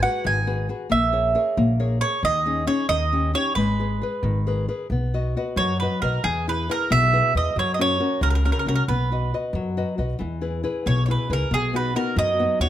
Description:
italian folk, Italian serenade; 91 BPM (dotted quarters); 6/8; straight; G# minor, B major from 4.9 s; A4 = 440 Hz
mandolin; melody; 0.0-12.7 s; G#4 to G#5; -23 LUFS; right 3 dB
nylon-string guitar; accompaniment; 0.0-12.7 s; B2 to D#5; -26 LUFS; left 4 dB
upright bass; bass; 0.0-12.7 s; G#1 to F#2; -24 LUFS; equal
light reverb; close, detailed microphones; -20 LUFS; side -12 dB against mid
0.0-4.9 A section; 4.9-12.7 B section
0.0 G#m7; 0.9 A#m7b5; 2.2 D#7sus4; 2.9 D#7; 3.6 G#madd9; 4.9 B; 6.2 E; 7.6 F#; 8.9 B; 10.2 E; 11.5 B
0.25 | 0.91 1.58 | 2.24 2.90 | 3.56 4.23 | 4.91 5.58 | 6.25 6.91 | 7.57 8.23 | 8.88 9.54 | 10.20 10.86 | 11.52 12.17

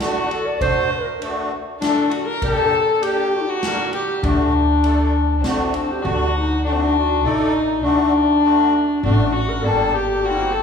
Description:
klezmer; 100 BPM; 3/4; straight; D phrygian dominant; A4 = 440 Hz
dark clarinet; melody; 0.0-10.6 s; C4 to D5; -20 LUFS; equal
rich violin; second line; 0.0-10.6 s; C4 to C5; -22 LUFS; left 7 dB
musette accordion; accompaniment; 0.0-10.5 s; G3 to D5; -24 LUFS; equal
upright bass; bass; 0.0-10.6 s; G1 to D2; -22 LUFS; equal
street-band drum kit; drums; 0.0-5.9 s; kick drum, ride cymbal, snare drum; -28 LUFS; equal
wet concert hall reverb, RT60 2.3 s; recorded in a church or concert hall, small room ambience; -16 LUFS; side -6 dB against mid
0.0-6.0 A section; 6.0-10.6 A section
0.0 D; 2.4 Gm; 4.2 D; 9.6 Gm
0.01 | 0.61 1.21 1.81 | 2.42 3.02 3.62 | 4.22 4.82 5.42 | 6.03 6.63 7.23 | 7.83 8.43 9.03 | 9.63 10.23

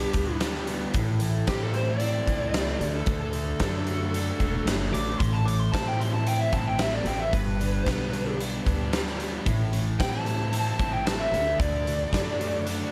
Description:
classic rock; 113 BPM; 4/4; straight; A dorian; A4 = 440 Hz
lead guitar through a small cranked amp; melody; 0.0-12.6 s; G4 to D6; -33 LUFS; equal; overdrive, analog delay
distorted electric guitar; riff; 0.0-12.9 s; G2 to F#4; -36 LUFS; equal; distortion
sludgy distorted guitar; riff; 0.0-12.9 s; G2 to F#4; -36 LUFS; equal; overdrive
upright bass; bass; 0.0-12.8 s; E1 to A2; -32 LUFS; equal
big rock drum kit; drums; 0.1-12.8 s; hi-hat, kick drum, snare drum; -32 LUFS; equal
light reverb, small room ambience; -26 LUFS; mono
0.0-12.9 A section
lead electric guitar solo 0.0-12.9
0.0 G; 0.9 Am; 2.8 D; 5.2 Am; 7.3 G; 9.5 Am; 11.3 D
0.41 | 0.94 1.48 2.01 2.54 | 3.08 3.61 4.14 4.67 | 5.21 5.74 6.27 6.80 | 7.33 7.87 8.40 8.93 | 9.46 10.00 10.53 11.06 | 11.59 12.12 12.65

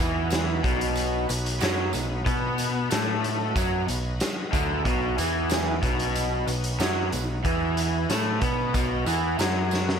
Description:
classic rock; 93 BPM; 4/4; straight; B mixolydian; A4 = 438 Hz
bright tonewheel organ; sustained chords; 0.0-10.0 s; B3 to D#5; -37 LUFS; equal; slow rotary speaker, overdrive, chorus vibrato
raw garage guitar; riff; 0.0-10.0 s; B2 to B3; -30 LUFS; left 13 dB; overdrive
raw garage guitar; riff; 0.0-10.0 s; B2 to B3; -30 LUFS; right 14 dB; overdrive
growling picked electric bass; bass; 0.0-10.0 s; B1 to B2; -28 LUFS; equal; overdrive
raw garage drum kit; drums; 0.3-10.0 s; hi-hat, kick drum, snare drum; -28 LUFS; equal
tambourine; percussion; 0.3-9.9 s; -40 LUFS; right 14 dB
light reverb, small room ambience; -23 LUFS; side -7 dB against mid
0.0-10.0 A section
drum fill 9.7
0.0 B
0.32 0.97 1.62 | 2.27 2.92 3.56 4.21 | 4.86 5.51 6.16 6.80 | 7.45 8.10 8.75 9.40

